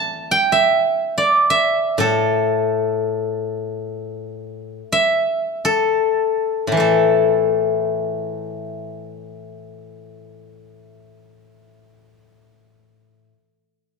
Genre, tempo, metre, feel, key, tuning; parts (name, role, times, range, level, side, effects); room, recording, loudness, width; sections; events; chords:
chinese traditional, Chinese solo plucked strings; free time; A4 = 440 Hz
steel-string zither; solo; 0.0-13.3 s; A2 to A5; -17 LUFS; left 1 dB
moderate recital hall reverb, RT60 1.4 s; dark, warm production; -16 LUFS; side -4 dB against mid
0.0-6.8 A section; 6.8-10.8 B section
slowing down 0.0-6.8